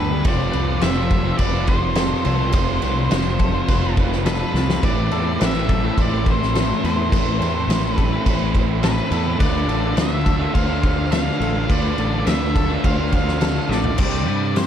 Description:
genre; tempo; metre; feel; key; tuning
rock, shoegaze and dream pop; 105 BPM; 4/4; straight; unclear; A4 = 443 Hz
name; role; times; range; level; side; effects
octave-fuzz lead guitar; melody; 0.0-14.7 s; B4 to F5; -26 LUFS; left 3 dB; distortion, tape echo
twelve-string electric guitar; arpeggios; 0.0-14.7 s; A4 to C5; -32 LUFS; left 7 dB; ensemble chorus, tape echo
overdriven electric guitar; riff; 0.0-14.7 s; G2 to G4; -26 LUFS; right 12 dB; reverse reverb
thick fuzz guitar; riff; 0.0-14.7 s; F2 to D4; -26 LUFS; left 10 dB; distortion, wide subtle chorus
fuzz fingered electric bass; bass; 0.0-14.7 s; F1 to G2; -23 LUFS; equal; overdrive
loose indie drum kit; drums; 0.2-14.7 s; crash cymbal, hi-hat, kick drum, snare drum, toms; -21 LUFS; equal; none
room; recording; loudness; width
small room ambience; none; -17 LUFS; side -9 dB against mid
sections
0.0-14.0 A section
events
drum fill 4.5, 13.7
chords
0.2 Fsus2; 4.8 Am; 9.4 Dm7; 14.0 Csus2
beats
| 0.25 0.82 1.39 1.97 | 2.54 3.11 3.69 4.26 | 4.83 5.40 5.97 6.55 | 7.12 7.69 8.27 8.84 | 9.41 9.98 10.55 11.13 | 11.70 12.27 12.84 13.42 | 13.99 14.56

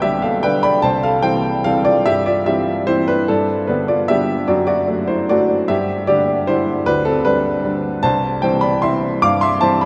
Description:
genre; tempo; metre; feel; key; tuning
classical, piano waltz; 142-160 BPM; 3/4; rubato; C major; A4 = 440 Hz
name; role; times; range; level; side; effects
warm grand piano; solo; 0.0-9.9 s; B1 to D6; -17 LUFS; equal; none
room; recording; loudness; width
wet cathedral reverb, RT60 5.9 s; in a vast, echoing space; -17 LUFS; mono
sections
0.0-9.9 A section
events
none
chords
0.0 G/B; 0.8 C; 3.3 G; 4.5 D/F#; 5.7 G; 8.0 C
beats
0.02 0.44 | 0.84 1.25 1.67 | 2.08 2.49 2.89 | 3.29 3.69 4.09 | 4.49 4.88 5.29 | 5.69 6.08 6.49 | 6.88 7.26 7.66 | 8.04 8.43 8.84 | 9.24 9.64

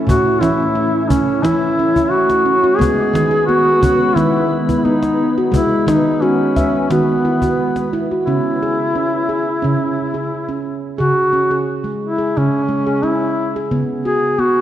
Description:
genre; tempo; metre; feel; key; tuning
world meditative, meditative tuned percussion; 88 BPM; 4/4; straight; C# minor; A4 = 440 Hz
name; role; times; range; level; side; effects
glassy FM pad; sustained chords; 0.0-8.2 s; G#3 to B4; -22 LUFS; equal; ensemble chorus, built-in reverb
handpan; arpeggios; 0.0-14.6 s; A2 to E5; -18 LUFS; right 2 dB; none
mellow duduk; melody; 0.1-14.6 s; B3 to G#4; -16 LUFS; left 1 dB; ping-pong delay
cajon; percussion; 0.1-8.0 s; none; -21 LUFS; equal; none
room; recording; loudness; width
wet echo chamber reverb, RT60 1.9 s, small room reverb; worn, warbling old tape, cassette tape, warbly pitch drift; -14 LUFS; side -11 dB against mid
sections
0.0-8.3 A section; 8.3-14.6 B section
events
none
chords
0.0 A; 2.8 G#m; 8.3 C#m; 13.7 B5/C#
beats
| 0.08 0.76 1.45 2.13 | 2.81 3.49 4.17 4.85 | 5.53 6.21 6.90 7.58 | 8.26 8.94 9.63 10.31 | 10.99 11.67 12.36 13.04 | 13.72 14.40

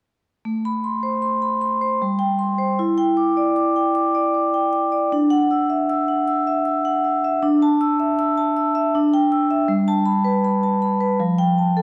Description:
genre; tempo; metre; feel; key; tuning
classical, contemporary piece for solo vibraphone; 78 BPM; 3/4; rubato; A dorian; A4 = 441 Hz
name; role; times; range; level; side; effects
vibraphone with medium hard mallets; solo; 0.5-11.8 s; F3 to E6; -20 LUFS; equal; none
room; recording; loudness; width
wet scoring stage reverb, RT60 1.6 s; dark, warm production; -20 LUFS; mono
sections
0.5-11.8 A section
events
none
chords
0.5 Amadd9; 2.0 Gsus4; 2.8 Em7; 5.1 Dadd9; 7.4 Dsus2; 9.0 Em7/D; 9.7 Gadd9; 11.2 Fadd9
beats
| 0.46 1.23 2.00 | 2.78 3.57 4.35 | 5.12 5.89 6.66 | 7.44 8.20 8.96 | 9.71 10.45 11.20

